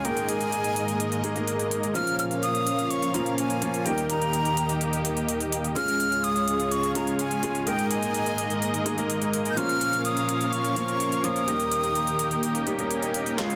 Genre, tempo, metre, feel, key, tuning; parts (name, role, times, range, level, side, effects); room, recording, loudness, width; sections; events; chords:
EDM, festival progressive house; 126 BPM; 4/4; straight; A4 = 440 Hz
breathy jazz flute; melody; 0.0-13.6 s; F5 to G6; -31 LUFS; equal; digital delay
felt-muted upright piano; accompaniment; 0.0-13.6 s; F3 to Bb4; -33 LUFS; equal; digital delay
warm studio string section; sustained chords; 0.0-13.6 s; Db2 to F5; -34 LUFS; equal; low-pass filter
dense compressed supersaw; riff; 0.0-13.6 s; Ab3 to G5; -32 LUFS; equal; low-pass filter, digital delay
big-room dance drum kit; drums; 0.0-13.6 s; hi-hat, snare drum; -35 LUFS; equal; overdrive, high-pass filter on hats, high-pass filter on snare
swell; sound effects; 12.6-13.4 s; -39 LUFS; equal
detuned saw bass; bass; 13.4-13.6 s; Db2; -35 LUFS; equal; chorus, high-pass filter
moderate recital hall reverb, RT60 1.6 s, small room ambience; dense, heavily limited modern master; -26 LUFS; mono
0.0-13.4 A section
swell 12.6-13.4; drum fill 13.4
0.0 Absus2; 2.0 Bbm; 3.9 Eb; 5.8 Db; 7.7 Absus2; 9.6 Bbm; 11.5 Eb